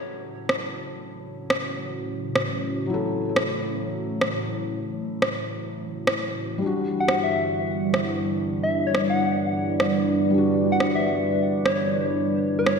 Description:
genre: future garage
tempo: 129 BPM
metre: 4/4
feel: swing 67% on 16ths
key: F# phrygian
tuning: A4 = 440 Hz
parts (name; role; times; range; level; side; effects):
- felt-muted upright piano; accompaniment; 0.0-12.8 s; F#3 to A4; -31 LUFS; left 3 dB; ping-pong delay
- dark analog pad; sustained chords; 0.0-12.8 s; G3 to D5; -25 LUFS; right 1 dB; chorus, phaser, vintage 12-bit sampler grit
- electronic rim click; drums; 0.5-12.8 s; none; -26 LUFS; equal; overdrive, small room ambience
- soft struck synth lead; melody; 7.0-12.8 s; B4 to F#5; -27 LUFS; left 1 dB; chorus, ping-pong delay
room: wet lush hall reverb, RT60 1.9 s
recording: dreamy mix soaked in reverb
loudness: -22 LUFS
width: side -5 dB against mid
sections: 0.0-12.8 A section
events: none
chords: 0.0 F#m7; 6.6 Em7/G

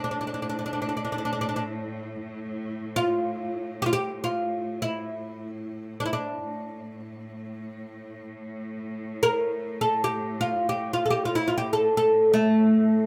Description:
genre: Arabic maqam ensemble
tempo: free time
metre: none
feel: none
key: unclear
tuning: A4 = 440 Hz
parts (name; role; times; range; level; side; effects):
- oud; melody; 0.0-13.1 s; A3 to Bb4; -26 LUFS; equal; none
- clear studio cello section; drone; 0.0-13.1 s; A2; -38 LUFS; equal; none
room: moderate studio reverb, RT60 0.6 s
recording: none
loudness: -26 LUFS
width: mono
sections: 0.0-13.1 A section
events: none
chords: none

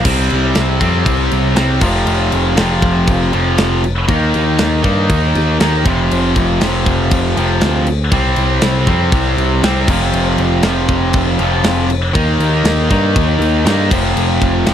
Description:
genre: hard rock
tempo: 119 BPM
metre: 4/4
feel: straight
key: unclear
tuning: A4 = 439 Hz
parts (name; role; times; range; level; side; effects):
- high-gain distorted guitar; riff; 0.0-14.7 s; F2 to Eb4; -15 LUFS; equal; distortion
- modern bright picked electric bass; bass; 0.0-14.7 s; F1 to G2; -16 LUFS; equal; none
- tight metal drum kit; drums; 0.0-14.7 s; crash cymbal, kick drum, snare drum; -18 LUFS; equal; none
room: light reverb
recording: none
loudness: -12 LUFS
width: side -9 dB against mid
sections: 0.1-14.7 A section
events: none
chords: 0.1 C5; 1.8 F5; 4.1 Eb; 5.9 F5; 8.1 C5; 9.9 F5; 12.2 Eb; 13.9 F5

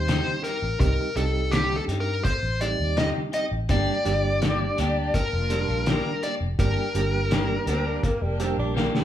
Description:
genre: straight-eighth soul blues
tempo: 83 BPM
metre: 4/4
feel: straight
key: G minor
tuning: A4 = 440 Hz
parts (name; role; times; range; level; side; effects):
- dark smooth lead guitar; melody; 0.0-9.0 s; G4 to Eb5; -27 LUFS; left 1 dB; overdrive
- overdriven reed electric piano; accompaniment; 0.0-9.0 s; G3 to G4; -31 LUFS; right 6 dB; fast tremolo
- vintage muted fingered electric bass; bass; 0.0-8.9 s; F1 to G2; -27 LUFS; equal; none
- clean electric guitar; stabs; 0.1-9.0 s; C3 to G4; -32 LUFS; left 4 dB; none
- cloth-damped thuddy drum kit; drums; 0.1-9.0 s; hi-hat, kick drum, snare drum; -27 LUFS; equal; none
- rich studio string section; sustained chords; 3.7-8.9 s; Bb3 to G4; -35 LUFS; left 2 dB; none
- raspy tenor saxophone; second line; 7.7-9.0 s; G3 to D4; -31 LUFS; right 3 dB; none
room: moderate large studio reverb, RT60 0.8 s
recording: band playing live in one room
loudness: -22 LUFS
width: side -11 dB against mid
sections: 0.0-9.0 A section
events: drum fill 8.8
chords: 0.0 Cm; 3.7 Gm

